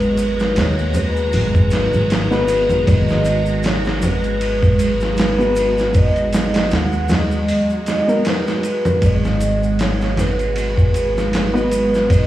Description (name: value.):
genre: trip hop.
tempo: 78 BPM.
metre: 4/4.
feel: swing 56% on 16ths.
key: G# minor.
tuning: A4 = 435 Hz.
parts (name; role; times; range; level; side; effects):
pure breathy sine lead; melody; 0.0-12.3 s; B4 to F#5; -21 LUFS; equal; analog chorus, dub echo.
bright reed electric piano; accompaniment; 0.0-12.3 s; B3 to B4; -23 LUFS; left 1 dB; overdrive, harmonic tremolo.
string machine, cellos; sustained chords; 0.0-12.3 s; G#3 to A#5; -23 LUFS; right 1 dB; phaser, ensemble chorus.
upright bass; bass; 0.0-12.3 s; G#1 to D#2; -20 LUFS; equal; none.
dusty soul sampler-style drum kit; drums; 0.0-12.3 s; hi-hat, kick drum, ride cymbal, snare drum; -20 LUFS; equal; overdrive.
tube shaker and congas; percussion; 0.0-12.3 s; none; -26 LUFS; equal; none.
room: light reverb, digital ambience.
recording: played on a big sound system in a bare room, large studio reverb, vinyl crackle, small room ambience.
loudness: -15 LUFS.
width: side -14 dB against mid.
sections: 0.0-12.3 A section.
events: none.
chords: 0.0 G#m7.